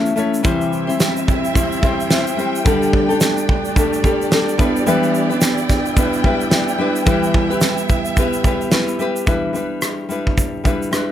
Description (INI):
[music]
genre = acoustic pop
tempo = 109 BPM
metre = 4/4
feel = swing 60% on 16ths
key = E minor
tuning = A4 = 445 Hz
[part]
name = nylon-string guitar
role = accompaniment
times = 0.0-11.1 s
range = C3 to C#5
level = -19 LUFS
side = left 3 dB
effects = none
[part]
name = mellow electric guitar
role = arpeggios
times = 0.0-9.8 s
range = E3 to A4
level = -24 LUFS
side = right 6 dB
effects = none
[part]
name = loose indie drum kit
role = drums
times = 0.1-11.1 s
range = kick drum, rim click, shaker, snare drum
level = -18 LUFS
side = right 1 dB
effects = none
[part]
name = warm studio string section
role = sustained chords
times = 0.5-9.2 s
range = A3 to G5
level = -24 LUFS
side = right 1 dB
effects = none
[sound]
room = light reverb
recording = none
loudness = -15 LUFS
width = side -11 dB against mid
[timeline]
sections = 0.0-9.3 A section; 9.3-11.1 B section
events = none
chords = 0.5 C; 2.7 Dsus4; 4.6 Em7; 7.1 Em; 9.3 Em7